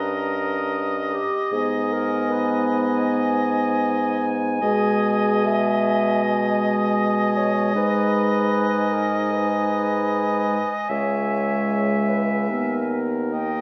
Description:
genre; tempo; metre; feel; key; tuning
classical, slow romantic movement for wind quintet; 77 BPM; 4/4; rubato; G# minor; A4 = 440 Hz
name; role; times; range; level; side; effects
silver concert flute; melody; 0.0-13.6 s; G5 to A#5; -30 LUFS; equal; none
clear oboe; second line; 0.0-13.6 s; D#5 to E5; -29 LUFS; equal; none
dark clarinet; accompaniment; 0.0-13.6 s; G4 to E5; -29 LUFS; equal; none
mellow French horn; accompaniment; 0.0-13.6 s; G#3 to C#4; -27 LUFS; equal; none
mellow bassoon; bass; 0.0-13.6 s; C#2 to B2; -28 LUFS; equal; none
room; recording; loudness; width
wet recital hall reverb, RT60 1.4 s; none; -22 LUFS; mono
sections
0.0-13.6 A section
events
none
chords
0.0 D#7/G; 1.5 G#m; 4.6 G#m/B; 7.8 G#m; 10.9 C#m; 12.5 G#m/D#

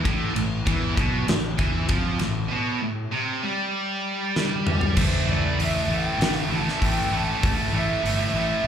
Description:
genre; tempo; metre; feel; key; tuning
hard rock; 98 BPM; 4/4; straight; A minor; A4 = 438 Hz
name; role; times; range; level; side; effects
high-gain distorted guitar; riff; 0.0-8.7 s; A2 to A3; -30 LUFS; left 10 dB; distortion
high-gain distorted guitar; riff; 0.0-8.7 s; A2 to A3; -28 LUFS; right 10 dB; distortion
overdriven electric guitar; riff; 0.0-5.0 s; A2 to G3; -30 LUFS; equal; none
fuzz fingered electric bass; bass; 0.0-8.7 s; G1 to F2; -27 LUFS; equal; overdrive
huge arena drum kit; drums; 0.1-8.2 s; crash cymbal, hi-hat, kick drum, ride cymbal, snare drum, toms; -26 LUFS; left 1 dB; none
lead guitar through a small cranked amp; melody; 5.0-8.7 s; C5 to A5; -28 LUFS; right 1 dB; overdrive, slapback echo, tape echo
room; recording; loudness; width
light reverb; live gig heard through the venue's PA, club reverb; -21 LUFS; side -8 dB against mid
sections
0.0-5.0 A section; 5.0-8.7 B section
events
drum fill 4.4-5.0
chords
0.0 Am; 5.0 A5

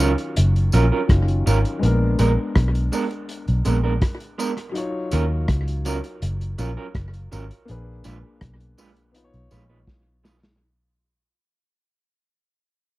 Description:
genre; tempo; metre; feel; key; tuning
lovers rock reggae; 82 BPM; 4/4; straight; Eb minor; A4 = 440 Hz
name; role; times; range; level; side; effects
dark concert grand piano; accompaniment; 0.0-10.6 s; Eb3 to Db5; -29 LUFS; left 3 dB; slapback echo
electric guitar through a small old amp; stabs; 0.0-10.4 s; Gb3 to Cb5; -26 LUFS; right 4 dB; spring reverb
vintage muted fingered electric bass; bass; 0.0-9.8 s; Gb1 to Eb2; -20 LUFS; equal; none
tambourine; percussion; 0.0-10.4 s; none; -35 LUFS; left 1 dB; none
vintage drum kit; drums; 0.2-10.6 s; hi-hat, kick drum, rim click, snare drum; -21 LUFS; equal; none
room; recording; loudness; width
little or no reverb; dry, close 1970s-style studio recording; -19 LUFS; side -18 dB against mid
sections
0.0-10.6 A section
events
fade-out 0.0-10.6; drum fill 9.9-10.6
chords
0.0 Ebm9; 1.8 Bb7b9; 4.8 Ebm9; 7.7 Bb7b9; 9.1 Db9

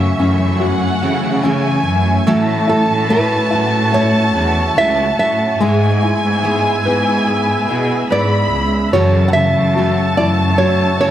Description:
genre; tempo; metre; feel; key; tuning
pop; 72 BPM; 4/4; straight; F# minor; A4 = 440 Hz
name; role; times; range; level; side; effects
nylon-string guitar; melody; 0.0-11.1 s; A4 to F#5; -18 LUFS; right 2 dB; none
dark studio violin section; second line; 0.0-11.1 s; E5 to B5; -20 LUFS; equal; none
dark baby grand piano; accompaniment; 0.0-11.1 s; C#3 to B4; -20 LUFS; left 4 dB; none
ethereal airy pad; sustained chords; 0.0-11.1 s; A3 to E6; -24 LUFS; equal; ensemble chorus, built-in reverb
picked steel-string acoustic guitar; arpeggios; 0.0-11.1 s; F#2 to G#4; -23 LUFS; right 4 dB; none
warm symphonic cello section; bass; 0.0-11.1 s; C#2 to C#3; -17 LUFS; equal; none
room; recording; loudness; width
light reverb; faint mains hum; -12 LUFS; side -11 dB against mid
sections
0.0-11.1 A section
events
none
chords
0.0 F#m7; 2.3 A6; 5.6 E/G#; 8.9 F#m7

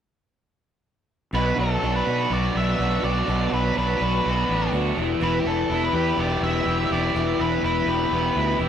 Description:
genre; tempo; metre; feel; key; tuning
rock; 124 BPM; 4/4; straight; B minor; A4 = 438 Hz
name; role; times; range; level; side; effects
octave-fuzz lead guitar; melody; 1.3-8.6 s; G4 to E5; -26 LUFS; right 1 dB; distortion
picked twelve-string acoustic guitar; accompaniment; 1.3-8.7 s; E2 to G4; -34 LUFS; right 3 dB; none
distorted electric guitar; riff; 1.3-8.7 s; B2 to G4; -28 LUFS; right 4 dB; overdrive
raw garage guitar; riff; 1.3-8.7 s; B2 to G4; -26 LUFS; left 3 dB; overdrive
fuzz fingered electric bass; bass; 1.3-8.7 s; E1 to B2; -25 LUFS; equal; overdrive
room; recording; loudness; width
moderate studio reverb, RT60 0.5 s; rough rehearsal-room recording, tube saturation; -20 LUFS; side -9 dB against mid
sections
1.3-8.7 A section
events
none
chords
1.3 Bm; 5.0 Em

